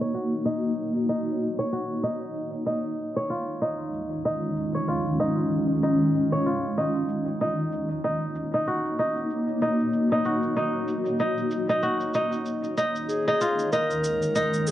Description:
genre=organic downtempo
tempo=95 BPM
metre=4/4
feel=swing 57% on 16ths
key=Eb minor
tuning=A4 = 440 Hz
part: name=granular cloud pad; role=sustained chords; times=0.0-14.7 s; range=Eb3 to Db5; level=-27 LUFS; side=equal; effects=built-in reverb, cassette tape
part: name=kora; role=arpeggios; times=0.0-14.7 s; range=Eb4 to Db5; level=-27 LUFS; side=equal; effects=low-pass filter, cassette tape, analog delay
part: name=shaker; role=drums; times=0.0-14.7 s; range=none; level=-40 LUFS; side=right 2 dB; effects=low-pass filter on perc, cassette tape, low-pass filter on hats, low-pass filter on snare
part: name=dark clarinet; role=melody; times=13.1-14.7 s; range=Ab4 to Bb4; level=-26 LUFS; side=left 1 dB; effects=none
room=wet studio reverb, RT60 0.6 s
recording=home recording on cassette, low-pass filter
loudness=-23 LUFS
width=side -12 dB against mid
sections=0.0-14.7 A section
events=filter sweep on drum 0.0-14.7; filter sweep on kora 0.0-14.7; filter sweep on ambient pad 0.0-14.7; filter sweep 0.0-14.7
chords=0.0 Ebm7; 2.4 Db/Eb; 7.4 Ebm7; 12.5 Db/Eb

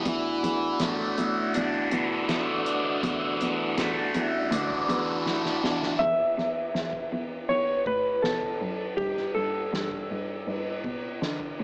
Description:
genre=psychedelic rock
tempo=81 BPM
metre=4/4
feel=straight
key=E minor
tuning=A4 = 440 Hz
part: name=mellow tonewheel organ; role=sustained chords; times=0.0-6.0 s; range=A3 to F#5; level=-35 LUFS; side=equal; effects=fast rotary speaker
part: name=thick fuzz guitar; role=riff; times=0.0-6.0 s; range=E3 to D4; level=-29 LUFS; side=equal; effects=distortion, phaser
part: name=dark cello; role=bass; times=0.1-11.6 s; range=C#2 to E3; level=-36 LUFS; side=equal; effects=none
part: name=soft-mallet drum kit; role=drums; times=0.1-11.6 s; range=hi-hat, kick drum, ride cymbal, snare drum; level=-37 LUFS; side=equal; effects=none
part: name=clean lap steel guitar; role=melody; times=6.0-10.8 s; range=G4 to E5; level=-30 LUFS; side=equal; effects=analog delay
room=light reverb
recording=small speaker sound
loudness=-28 LUFS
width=mono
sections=0.0-6.0 A section; 6.0-11.6 B section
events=drum fill 5.3-6.0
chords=0.1 D/E; 6.0 E5; 9.0 Gsus2

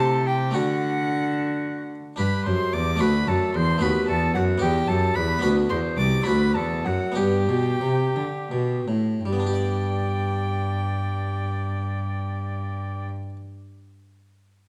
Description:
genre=classical, baroque-style sonata movement with continuo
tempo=52-75 BPM (dotted quarters)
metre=6/8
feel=straight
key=G major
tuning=A4 = 440 Hz
part: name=clear oboe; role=melody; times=0.0-13.1 s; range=F#4 to D5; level=-35 LUFS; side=equal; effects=none
part: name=warm violin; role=second line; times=0.0-13.1 s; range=F#5 to D6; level=-32 LUFS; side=equal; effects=none
part: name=harpsichord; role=accompaniment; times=0.0-13.4 s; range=C2 to D5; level=-27 LUFS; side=equal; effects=none
part: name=rich cello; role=bass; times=0.0-13.1 s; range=C2 to D3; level=-28 LUFS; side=equal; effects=none
room=moderate recital hall reverb, RT60 1.4 s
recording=none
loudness=-24 LUFS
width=mono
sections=0.0-9.2 A section; 9.2-13.8 B section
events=slowing down 4.6-9.2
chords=0.0 Am7/C; 0.5 D; 2.2 G5; 3.0 D; 3.8 B7/D#; 4.6 Em; 5.4 Bm/D; 6.3 D7; 7.2 G

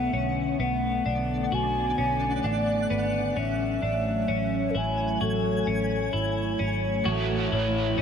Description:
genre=dream pop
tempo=65 BPM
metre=4/4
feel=straight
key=A major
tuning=A4 = 441 Hz
part: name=breathy reedy alto ocarina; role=melody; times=0.0-8.0 s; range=A4 to G#5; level=-30 LUFS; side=left 1 dB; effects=digital delay
part: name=hollow soft pad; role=sustained chords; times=0.0-8.0 s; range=D3 to C#5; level=-30 LUFS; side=right 1 dB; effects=chorus
part: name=twelve-string electric guitar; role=arpeggios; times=0.0-8.0 s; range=B3 to F#4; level=-30 LUFS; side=left 4 dB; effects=wide subtle chorus, digital delay
part: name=vintage muted picked electric bass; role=bass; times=0.0-8.0 s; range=G#1 to B1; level=-30 LUFS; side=equal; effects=none
part: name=twinkling granular texture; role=texture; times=0.6-8.0 s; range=D4 to G#5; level=-38 LUFS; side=right 1 dB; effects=built-in reverb, digital delay
part: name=crunchy overdriven guitar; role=accompaniment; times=7.0-8.0 s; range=A2 to A4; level=-28 LUFS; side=right 6 dB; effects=harmonic tremolo, analog chorus
room=moderate huge ambient reverb, RT60 7.2 s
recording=none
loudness=-24 LUFS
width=side -7 dB against mid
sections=0.0-7.1 A section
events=none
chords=0.0 Bm7; 3.4 A6; 7.1 A

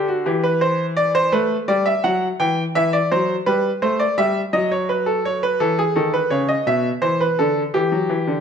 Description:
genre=classical, baroque-style two-part invention for grand piano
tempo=56 BPM (dotted quarters)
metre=12/8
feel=straight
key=E minor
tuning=A4 = 440 Hz
part: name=bright grand piano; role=solo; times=0.0-8.4 s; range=B2 to G5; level=-17 LUFS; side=equal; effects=none
room=moderate recital hall reverb, RT60 1.4 s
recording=close, detailed microphones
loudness=-17 LUFS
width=side -7 dB against mid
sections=0.0-8.4 A section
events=none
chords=0.3 Em; 4.5 D#dim/F#; 6.7 Em/B

